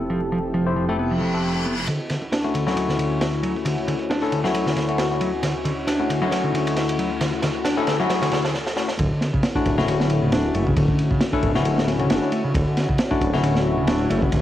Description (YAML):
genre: breakbeat, breaks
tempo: 135 BPM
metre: 4/4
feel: swing 55% on 16ths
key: D major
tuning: A4 = 440 Hz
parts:
  - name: phased analog pad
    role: sustained chords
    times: 0.0-14.4 s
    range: D2 to A4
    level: -30 LUFS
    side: equal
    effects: phaser, chorus, vintage 12-bit sampler grit, sidechain pumping, cassette tape
  - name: bell-like tine electric piano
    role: stabs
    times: 0.0-14.4 s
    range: A3 to C5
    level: -25 LUFS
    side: left 5 dB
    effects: low-pass filter, cassette tape, analog delay
  - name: detuned saw bass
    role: bass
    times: 0.0-1.9, 9.0-14.4 s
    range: D1 to F#1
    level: -26 LUFS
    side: right 1 dB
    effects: none
  - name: modern bright picked electric bass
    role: riff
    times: 0.1-14.4 s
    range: C#3 to D4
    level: -24 LUFS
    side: right 1 dB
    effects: overdrive, low-pass filter, cassette tape
  - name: reverse cymbal and riser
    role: sound effects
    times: 1.1-8.5 s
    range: none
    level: -33 LUFS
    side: equal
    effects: none
  - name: crunchy breakbeat drum kit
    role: drums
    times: 1.9-14.4 s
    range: kick drum, ride cymbal, snare drum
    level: -25 LUFS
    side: right 1 dB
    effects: high-pass filter on kick, high-pass filter on cymbals, high-pass filter on snare, high-pass filter on room
room: moderate studio reverb, RT60 0.6 s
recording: home recording on cassette, vinyl crackle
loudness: -19 LUFS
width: side -12 dB against mid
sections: 0.0-1.9 A section; 1.9-9.0 B section; 9.0-14.4 C section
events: reverse cymbal 1.1-1.9; build-up 1.9-9.0; filter sweep on picked electric bass 1.9-9.0; drum fill 5.4-8.5, 8.5-9.0; break 8.5-9.0; drop 9.0-14.4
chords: 0.0 Fmaj9; 1.9 Dmaj9